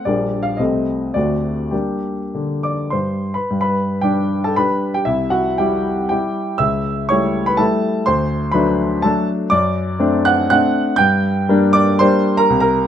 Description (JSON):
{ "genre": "classical, romantic triple-time dance for piano with dotted rhythms", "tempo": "95-133 BPM", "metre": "3/4", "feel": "rubato", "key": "G minor, G major from 3.5 s, G minor from 9.5 s", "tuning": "A4 = 439 Hz", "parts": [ { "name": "clear baby grand piano", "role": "solo", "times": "0.0-12.9 s", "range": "Bb1 to G6", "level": "-15 LUFS", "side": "equal", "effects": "none" } ], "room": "light reverb", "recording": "close, detailed microphones", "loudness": "-15 LUFS", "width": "side -9 dB against mid", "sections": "0.0-3.5 A section; 3.5-12.9 B section", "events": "none", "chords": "0.1 Gm/Bb; 0.6 Adim/C; 1.2 D7; 1.7 Gm; 3.5 G; 5.1 C; 6.6 A7/C#; 8.1 D; 9.5 D7/F#; 11.0 Gm" }